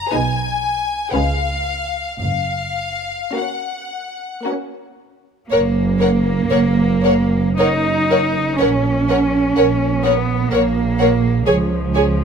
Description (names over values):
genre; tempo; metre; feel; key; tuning
classical, slow romantic movement for string orchestra; 52-63 BPM; 3/4; rubato; F# major; A4 = 441 Hz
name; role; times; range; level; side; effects
clear studio violin section; melody; 0.0-12.0 s; E#5 to A#5; -24 LUFS; left 4 dB; none
rich studio violin section; second line; 0.1-12.0 s; F#4 to C#5; -22 LUFS; left 3 dB; none
rich studio viola section; accompaniment; 0.1-12.0 s; G#3 to A#4; -22 LUFS; right 2 dB; none
rich studio cello section; bass; 0.1-12.2 s; F#2 to D#4; -19 LUFS; right 2 dB; none
rich studio double bass section; bass; 0.1-12.2 s; F#1 to C#2; -20 LUFS; right 3 dB; none
room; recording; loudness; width
light reverb; close, detailed microphones; -15 LUFS; side -6 dB against mid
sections
0.0-5.5 A section; 5.5-12.2 B section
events
none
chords
0.1 G#m/B; 1.1 C#7; 2.2 F#; 8.6 F#/A# (rootless); 11.5 C#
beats
0.13 1.13 | 2.21 3.35 4.46 | 5.51 6.50 7.59 | 8.60 9.57 10.52 | 11.47